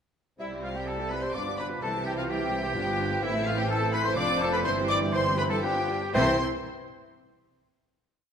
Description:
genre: quick classical-period movement for symphony orchestra.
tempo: 116-129 BPM.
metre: 3/4.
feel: rubato.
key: C major.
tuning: A4 = 441 Hz.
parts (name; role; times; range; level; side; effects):
rich chamber violin section; melody; 0.4-6.4 s; E5 to D6; -34 LUFS; left 2 dB; none.
clear clarinet; second line; 0.4-6.4 s; B4 to C5; -39 LUFS; left 3 dB; none.
clear oboe; second line; 0.4-6.4 s; E4 to D5; -35 LUFS; right 2 dB; none.
hollow concert flute; second line; 0.4-6.4 s; E5 to D6; -35 LUFS; left 2 dB; none.
rich chamber violin section; second line; 0.4-6.4 s; E4 to D5; -36 LUFS; left 2 dB; none.
mellow bassoon; accompaniment; 0.4-6.4 s; E3 to G3; -35 LUFS; right 2 dB; none.
rich chamber viola section; accompaniment; 0.4-6.4 s; G3 to A4; -36 LUFS; right 2 dB; none.
mellow French horn section; sustained chords; 0.4-6.4 s; B3 to G4; -36 LUFS; left 4 dB; none.
dark trumpet section; stabs; 0.4-6.4 s; E4 to D5; -34 LUFS; equal; none.
clear chamber cello section; bass; 0.4-6.4 s; F2 to C3; -34 LUFS; right 1 dB; none.
clear symphonic double bass section; bass; 0.4-6.4 s; F1 to C2; -36 LUFS; right 3 dB; none.
room: wet scoring stage reverb, RT60 1.6 s.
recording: none.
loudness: -25 LUFS.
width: side -7 dB against mid.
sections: 0.4-6.1 A section; 6.1-7.6 final chord.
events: none.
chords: 0.4 C; 1.3 G7; 1.8 C; 2.8 G7; 3.2 Am; 4.2 Dm7/F; 4.7 C/G; 5.6 G7; 6.1 C.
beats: | 0.39 0.87 1.35 | 1.82 2.29 2.76 | 3.23 3.69 4.17 | 4.65 5.14 5.63 | 6.15.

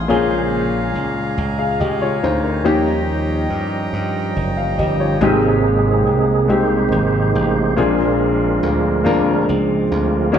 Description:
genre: slow gospel.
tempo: 47 BPM (dotted quarters).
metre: 6/8.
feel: straight.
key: Ab major.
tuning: A4 = 440 Hz.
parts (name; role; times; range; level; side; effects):
warm upright piano; accompaniment; 0.0-10.4 s; Ab2 to F5; -19 LUFS; left 4 dB; none.
accordion; sustained chords; 0.0-5.2 s; Eb5 to Bb5; -27 LUFS; right 3 dB; none.
slap bass; bass; 0.0-10.4 s; Gb1 to G2; -21 LUFS; equal; none.
percussive tonewheel organ; sustained chords; 0.1-10.4 s; C3 to C5; -19 LUFS; right 4 dB; fast rotary speaker, overdrive, chorus vibrato.
room: wet recital hall reverb, RT60 1.4 s.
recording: recorded in a church or concert hall.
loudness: -15 LUFS.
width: side -8 dB against mid.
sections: 0.0-5.2 A section; 5.2-10.4 B section.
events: tonewheel organ solo 0.0-5.2, 5.2-10.4.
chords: 0.1 Bbm7; 2.7 Eb7; 5.2 Abmaj7; 7.8 Bb7.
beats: | 0.09 1.37 | 2.65 3.93 | 5.21 6.49 | 7.77 9.05 | 10.34.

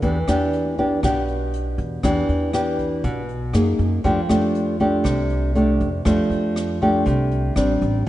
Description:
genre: bossa nova.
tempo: 119 BPM.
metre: 4/4.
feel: straight.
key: unclear.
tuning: A4 = 435 Hz.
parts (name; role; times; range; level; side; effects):
nylon-string guitar; accompaniment; 0.0-8.1 s; B2 to G#4; -20 LUFS; equal; none.
upright bass; bass; 0.0-8.1 s; A1 to F#2; -24 LUFS; equal; none.
jazz brush drum kit; drums; 0.0-8.1 s; hi-hat, kick drum, rim click; -30 LUFS; equal; none.
room: moderate lush hall reverb, RT60 2.0 s, studio ambience.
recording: rough home demo mix, nothing above 10.4 kHz.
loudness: -18 LUFS.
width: side -14 dB against mid.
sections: 0.0-8.1 A section.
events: none.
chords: 0.0 Em7; 3.5 F#69; 4.0 F69; 7.6 Am7.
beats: | 0.02 0.53 1.03 1.53 | 2.03 2.54 3.04 3.54 | 4.04 4.55 5.05 5.55 | 6.06 6.56 7.06 7.57 | 8.07.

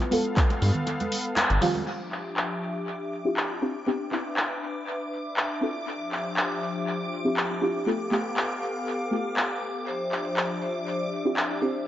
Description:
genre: deep house.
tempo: 120 BPM.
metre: 4/4.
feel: swing 53% on 16ths.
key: D dorian.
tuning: A4 = 445 Hz.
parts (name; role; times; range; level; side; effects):
warm analog pad; sustained chords; 0.0-11.9 s; F3 to F5; -32 LUFS; left 2 dB; chorus, sidechain pumping.
deep mellow chord stab; stabs; 0.0-11.8 s; F3 to A4; -28 LUFS; equal; chorus, sidechain pumping, analog delay.
deep house drum kit; drums; 0.0-11.5 s; crash cymbal, handclaps, hi-hat; -29 LUFS; equal; low-pass filter on hats, low-pass filter on snare, low-pass filter on cymbals, low-pass filter on room, tape echo.
congas; percussion; 0.1-1.8 s; none; -33 LUFS; right 4 dB; none.
electronic kick drum; drums; 0.4-0.5 s; none; -23 LUFS; equal; none.
round analog bass; bass; 0.6-1.6 s; G1 to G2; -22 LUFS; equal; tube saturation, sidechain pumping.
string machine, violins; texture; 1.9-11.9 s; D6; -38 LUFS; right 1 dB; ensemble chorus, sidechain pumping.
vibraphone with medium hard mallets; melody; 9.9-11.8 s; C5; -32 LUFS; left 1 dB; vintage 12-bit sampler grit, dub echo.
room: wet spring reverb, RT60 1.6 s.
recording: echo-heavy mix, nothing above 7.7 kHz.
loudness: -25 LUFS.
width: side -12 dB against mid.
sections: 0.0-1.9 A section; 1.9-11.9 B section.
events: filter sweep on synth stab 0.0-1.9, 1.9-11.9; kick drops out 0.9-1.9; band accent 1.4; filter sweep on analog synth pad 1.9-11.9.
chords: 0.0 G9; 1.9 Dm11; 3.9 Cmaj9; 5.9 Dm11; 7.9 G9; 9.9 Dm11.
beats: 0.37 0.87 1.37 | 1.87 2.37 2.87 3.37 | 3.87 4.37 4.87 5.37 | 5.87 6.37 6.87 7.37 | 7.87 8.37 8.87 9.37 | 9.87 10.37 10.87 11.37 | 11.87.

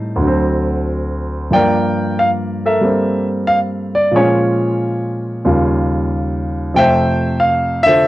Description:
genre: solo jazz.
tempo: 92 BPM.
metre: 4/4.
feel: swing 69% on 8ths.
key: unclear.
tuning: A4 = 440 Hz.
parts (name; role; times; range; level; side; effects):
warm grand piano; solo; 0.0-8.1 s; D2 to A5; -13 LUFS; equal; cassette tape.
room: light reverb.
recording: home recording on cassette.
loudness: -14 LUFS.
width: side -16 dB against mid.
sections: 0.0-8.1 A section.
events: none.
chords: 0.2 D7; 1.5 Gm9; 4.1 Bbm7; 5.5 Eb9; 6.8 Fmaj7.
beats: 0.21 0.86 | 1.52 2.17 2.83 3.48 | 4.14 4.79 5.45 6.11 | 6.76 7.42 8.07.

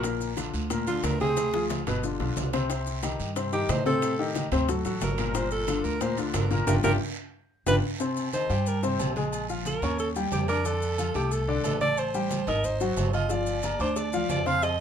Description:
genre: Afro-Cuban jazz.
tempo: 181 BPM.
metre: 4/4.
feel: straight.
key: G minor, C minor from 8.0 s.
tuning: A4 = 442 Hz.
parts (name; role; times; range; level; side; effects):
clear alto saxophone; melody; 0.0-14.8 s; F4 to F5; -29 LUFS; right 2 dB; none.
warm grand piano; accompaniment; 0.0-14.7 s; Bb2 to F6; -29 LUFS; left 4 dB; none.
upright bass; bass; 0.0-14.8 s; G1 to A2; -31 LUFS; right 1 dB; none.
bongos and cowbell; percussion; 0.0-7.7, 13.3-14.8 s; none; -38 LUFS; left 6 dB; none.
congas; percussion; 0.0-14.8 s; none; -35 LUFS; right 1 dB; none.
guiro; percussion; 0.0-14.8 s; none; -42 LUFS; right 7 dB; none.
maracas; percussion; 0.0-14.8 s; none; -42 LUFS; left 5 dB; none.
timbales and agogo bells; percussion; 0.0-14.8 s; none; -37 LUFS; right 8 dB; none.
room: moderate club reverb, RT60 0.5 s.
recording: minimal, uncompressed stereo recording.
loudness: -24 LUFS.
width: side -8 dB against mid.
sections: 0.0-8.0 A section; 8.0-14.8 A section.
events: alto saxophone solo 0.0-14.8; drum fill 1.4-2.7, 7.3-8.0; band accent 6.7-8.0.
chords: 0.0 Bbadd9; 1.4 Dm7b5; 2.0 G7; 2.7 Cm; 4.0 Am7b5; 4.7 D; 5.3 Gm7; 7.3 G7(no3); 8.0 Cm7; 9.3 Bbm7; 10.0 Eb9; 10.7 F6; 12.0 Am7b5; 12.6 Ab7; 13.3 Gm7.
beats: | 0.04 0.38 0.71 1.04 | 1.37 1.70 2.03 2.37 | 2.70 3.03 3.36 3.69 | 4.02 4.35 4.68 5.02 | 5.35 5.68 6.01 6.34 | 6.67 7.00 7.33 7.67 | 8.00 8.33 8.66 8.99 | 9.32 9.65 9.99 10.32 | 10.65 10.98 11.31 11.64 | 11.98 12.31 12.64 12.97 | 13.30 13.63 13.96 14.30 | 14.63.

